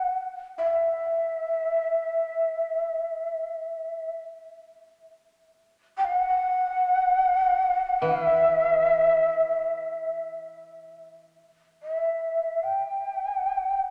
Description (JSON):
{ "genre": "japanese traditional, Japanese chamber music", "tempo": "free time", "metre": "none", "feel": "none", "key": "E hirajoshi", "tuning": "A4 = 438 Hz", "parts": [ { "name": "breathy mellow shakuhachi", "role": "melody", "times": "0.0-13.9 s", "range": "E5 to G5", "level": "-26 LUFS", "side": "equal", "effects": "none" }, { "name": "koto", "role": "accompaniment", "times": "8.0-11.4 s", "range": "E3", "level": "-35 LUFS", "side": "equal", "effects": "none" } ], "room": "wet church reverb, RT60 3.4 s", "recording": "none", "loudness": "-25 LUFS", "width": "mono", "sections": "0.0-10.5 A section; 10.5-13.9 A section", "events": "none", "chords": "none", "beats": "free time" }